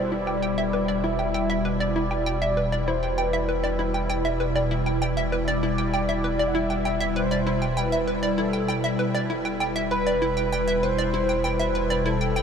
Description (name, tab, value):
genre	ambient, sequencer-driven space music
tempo	98 BPM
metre	4/4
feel	straight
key	E minor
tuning	A4 = 440 Hz
part	pulse-width lead	melody	0.0-12.4 s	A4 to F#5	-28 LUFS	equal	chorus, ping-pong delay
part	evolving wavetable pad	sustained chords	0.0-12.4 s	B2 to E4	-26 LUFS	left 1 dB	ensemble chorus, built-in reverb
part	hollow square pluck	riff	0.0-12.4 s	E4 to G5	-28 LUFS	equal	lush chorus, ping-pong delay
part	warm sub bass	bass	0.0-12.4 s	E1	-32 LUFS	equal	none
room	wet huge ambient reverb, RT60 8.1 s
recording	none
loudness	-22 LUFS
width	side -7 dB against mid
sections	0.0-12.4 A section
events	none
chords	0.0 Em